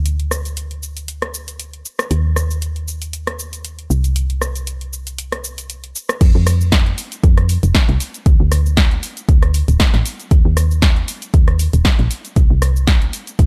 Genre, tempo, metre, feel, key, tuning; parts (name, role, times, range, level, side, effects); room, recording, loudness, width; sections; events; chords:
deep house; 117 BPM; 4/4; swing 55% on 16ths; A4 = 440 Hz
woody FM bass; bass; 0.0-13.5 s; D1 to F2; -20 LUFS; equal; sidechain pumping
deep house drum kit; drums; 0.1-13.5 s; cabasa, crash cymbal, hi-hat, rim click, snare drum; -24 LUFS; equal
electronic kick drum; drums; 6.2-13.5 s; -15 LUFS; equal
little or no reverb; lossy compression artefacts; -16 LUFS; mono
0.0-6.2 A section; 6.2-13.5 B section
drop 6.2-13.5